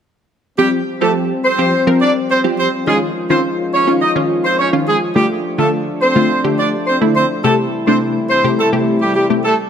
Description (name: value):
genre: pop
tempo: 105 BPM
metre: 4/4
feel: straight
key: F major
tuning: A4 = 440 Hz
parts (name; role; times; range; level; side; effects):
- warm horn section; melody; 0.6-9.5 s; G3 to Eb5; -16 LUFS; right 1 dB; tape echo
- punchy chord stab; accompaniment; 0.6-9.5 s; C3 to Bb4; -16 LUFS; left 1 dB; chorus
- mellow French horn section; sustained chords; 0.6-9.7 s; C3 to F4; -21 LUFS; left 1 dB; none
room: moderate lush hall reverb, RT60 2.2 s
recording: none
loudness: -13 LUFS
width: side -8 dB against mid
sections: 0.6-9.7 A section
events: none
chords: 0.6 Fsus2; 2.9 Dbadd9; 5.2 Dm; 7.4 Am7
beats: | 0.58 1.16 1.73 2.30 | 2.87 3.44 4.01 4.58 | 5.16 5.73 6.30 6.87 | 7.44 8.01 8.59 9.16